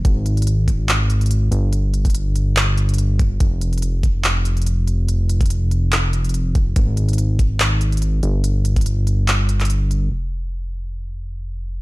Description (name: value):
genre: future bass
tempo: 143 BPM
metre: 4/4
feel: swing 54% on 16ths, half-time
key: F minor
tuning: A4 = 440 Hz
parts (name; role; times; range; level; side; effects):
- fat analog bass; bass; 0.0-11.8 s; F1 to Ab1; -18 LUFS; equal; sidechain pumping
- electronic kick drum; drums; 0.0-8.8 s; none; -17 LUFS; equal; studio reverb
- trap drum kit; drums; 0.0-10.0 s; handclaps, hi-hat; -22 LUFS; equal; low-pass filter on hats, studio reverb, low-pass filter on snare, low-pass filter on cymbals
room: little or no reverb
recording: dark, warm production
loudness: -16 LUFS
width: side -20 dB against mid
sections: 0.0-10.1 A section; 10.1-11.8 B section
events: drop 0.0-10.1; kick drops out 9.3-10.1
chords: none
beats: | 0.05 0.47 0.89 1.31 | 1.73 2.15 2.57 2.99 | 3.41 3.83 4.25 4.67 | 5.08 5.50 5.92 6.34 | 6.76 7.18 7.60 8.02 | 8.44 8.86 9.28 9.70 | 10.12 10.54 10.96 11.38 | 11.80